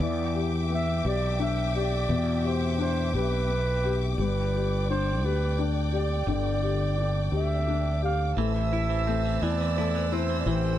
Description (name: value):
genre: six-eight pop ballad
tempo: 57 BPM (dotted quarters)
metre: 6/8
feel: straight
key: unclear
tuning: A4 = 441 Hz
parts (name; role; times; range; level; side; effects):
- mellow flugelhorn; melody; 0.0-10.8 s; B4 to F5; -31 LUFS; right 3 dB; none
- felt-muted upright piano; accompaniment; 0.0-10.8 s; B2 to G4; -30 LUFS; left 8 dB; none
- warm studio string section; sustained chords; 0.0-10.8 s; C5 to E6; -35 LUFS; left 1 dB; none
- fretless electric bass; bass; 0.0-10.8 s; G1 to E2; -27 LUFS; right 1 dB; none
- direct-recorded clean electric guitar; arpeggios; 8.4-10.8 s; E3 to E4; -34 LUFS; right 13 dB; none
room: light reverb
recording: dry, close 1970s-style studio recording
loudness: -24 LUFS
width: side -12 dB against mid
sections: 0.0-10.8 A section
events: none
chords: 0.0 Em7; 4.2 G; 8.4 Am